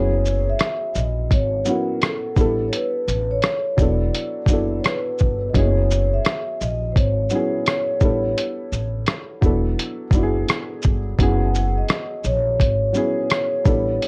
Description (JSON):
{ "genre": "lo-fi hip hop", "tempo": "85 BPM", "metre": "4/4", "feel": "swing 64% on 16ths", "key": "unclear", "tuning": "A4 = 440 Hz", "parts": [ { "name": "vibraphone with soft mallets", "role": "melody", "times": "0.0-14.1 s", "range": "A4 to F#5", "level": "-26 LUFS", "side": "equal", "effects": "analog delay" }, { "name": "warm upright piano", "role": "accompaniment", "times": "0.0-14.1 s", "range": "F#3 to A4", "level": "-28 LUFS", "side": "equal", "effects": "cassette tape" }, { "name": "upright bass", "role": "bass", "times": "0.0-14.0 s", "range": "E1 to A#1", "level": "-25 LUFS", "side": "equal", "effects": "none" }, { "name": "lo-fi sampler-style drum kit", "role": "drums", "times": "0.3-14.1 s", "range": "hi-hat, kick drum, rim click, shaker", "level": "-22 LUFS", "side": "equal", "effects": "none" } ], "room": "moderate studio reverb, RT60 0.6 s", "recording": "worn, warbling old tape, cassette tape, warbly pitch drift", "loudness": "-21 LUFS", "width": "mono", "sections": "0.0-14.1 A section", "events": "none", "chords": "0.0 F#9sus4; 2.4 A9sus4; 3.8 E9sus4; 5.5 F#9sus4; 8.0 A9sus4; 9.4 E9sus4; 11.2 F#9sus4", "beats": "0.60 1.31 2.01 | 2.72 3.42 4.13 4.84 | 5.54 6.25 6.95 7.66 | 8.37 9.07 9.78 10.48 | 11.19 11.89 12.60 13.31 | 14.01" }